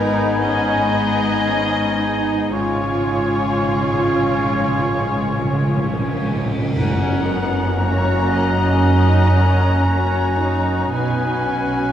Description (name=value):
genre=cinematic, emotional film score for orchestra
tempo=58 BPM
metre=4/4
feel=rubato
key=F# major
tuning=A4 = 440 Hz
part: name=muted studio violin section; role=melody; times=0.0-11.9 s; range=B4 to A#5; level=-28 LUFS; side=left 3 dB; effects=none
part: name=muted studio violin section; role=second line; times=0.0-11.9 s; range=G#4 to D#5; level=-30 LUFS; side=left 2 dB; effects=none
part: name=silver concert flute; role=second line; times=0.0-11.9 s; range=A#5 to C#6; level=-28 LUFS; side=left 1 dB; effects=none
part: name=warm clarinet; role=second line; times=0.0-11.9 s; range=C#4 to E#4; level=-27 LUFS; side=left 1 dB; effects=none
part: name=warm oboe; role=second line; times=0.0-11.9 s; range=F#5 to G#5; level=-27 LUFS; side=left 1 dB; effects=none
part: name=muted studio viola section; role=accompaniment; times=0.0-11.9 s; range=A#3 to E#4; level=-26 LUFS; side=right 2 dB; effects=none
part: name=warm French horn section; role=sustained chords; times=0.0-11.9 s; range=B3 to F#4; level=-24 LUFS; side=left 1 dB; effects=none
part: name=muted studio cello section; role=bass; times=0.0-11.9 s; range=F#2 to B2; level=-24 LUFS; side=right 1 dB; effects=none
part: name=muted studio double bass section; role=bass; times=0.0-11.9 s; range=F#1 to B1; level=-23 LUFS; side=right 1 dB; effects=none
part: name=cymbal swell and tam-tam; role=percussion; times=2.5-10.9 s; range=none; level=-31 LUFS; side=left 1 dB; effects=none
part: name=timpani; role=percussion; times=2.5-8.3 s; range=F#2 to C#3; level=-24 LUFS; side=right 1 dB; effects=none
room=wet recital hall reverb, RT60 1.4 s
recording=recorded in a church or concert hall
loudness=-16 LUFS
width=side -10 dB against mid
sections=0.0-6.8 A section; 6.8-11.9 B section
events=timpani fill 2.5-6.8; band accent 6.8-7.8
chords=0.0 G#m; 2.5 C#/G#; 6.8 F#; 10.9 Bsus2